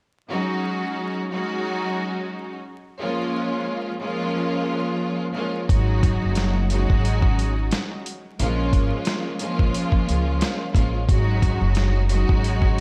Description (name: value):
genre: hip hop, boom-bap hip-hop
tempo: 89 BPM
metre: 4/4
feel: swing 54% on 16ths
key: unclear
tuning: A4 = 442 Hz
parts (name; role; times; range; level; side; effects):
- rich studio string section; accompaniment; 0.3-12.8 s; F3 to Gb4; -27 LUFS; equal; cassette tape
- upright bass; bass; 5.7-12.8 s; Gb1 to Db2; -24 LUFS; equal; none
- dusty soul sampler-style drum kit; drums; 5.7-12.8 s; hi-hat, kick drum, snare drum; -24 LUFS; equal; none
room: moderate lush hall reverb, RT60 1.8 s, small room reverb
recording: dreamy mix soaked in reverb, vinyl crackle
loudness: -23 LUFS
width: mono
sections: 0.3-5.7 A section; 5.7-12.8 B section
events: none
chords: 0.3 Ab7sus4; 3.0 Bbm7; 5.7 Ab7sus4; 8.4 Bbm7; 11.1 Ab7sus4